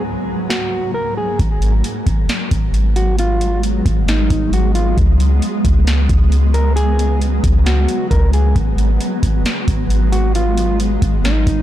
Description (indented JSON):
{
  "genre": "hip hop, atmospheric cloud-rap",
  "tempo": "134 BPM",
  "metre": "4/4",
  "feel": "half-time",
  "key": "G# dorian",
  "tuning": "A4 = 440 Hz",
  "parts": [
    { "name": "mellow electric guitar", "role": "melody", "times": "0.0-11.6 s", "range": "D#4 to A#4", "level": "-23 LUFS", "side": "equal", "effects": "low-pass filter, tape echo" },
    { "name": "shimmering ambient pad", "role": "sustained chords", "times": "0.0-11.6 s", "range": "C#2 to B3", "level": "-21 LUFS", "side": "equal", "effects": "chorus, built-in reverb, sidechain pumping" },
    { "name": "booming analog drum machine", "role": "drums", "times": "0.5-11.6 s", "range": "hi-hat, kick drum, snare drum", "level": "-19 LUFS", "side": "equal", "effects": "none" },
    { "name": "clean 808-style bass", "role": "bass", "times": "1.4-11.6 s", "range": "G#1 to C#2", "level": "-15 LUFS", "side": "equal", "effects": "none" }
  ],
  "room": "digital ambience",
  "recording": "blown-out, overdriven recording, overdrive",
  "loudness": "-13 LUFS",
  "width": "side -12 dB against mid",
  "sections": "0.0-1.4 A section; 1.4-11.6 B section",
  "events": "kick muted 0.5-1.4",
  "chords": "0.0 C#sus4; 1.4 G#m7; 5.0 C#7sus4; 8.6 G#m7",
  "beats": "0.05 0.50 0.95 | 1.39 1.84 2.29 2.74 | 3.19 3.63 4.08 4.53 | 4.98 5.42 5.87 6.32 | 6.77 7.21 7.66 8.11 | 8.56 9.01 9.45 9.90 | 10.35 10.80 11.24"
}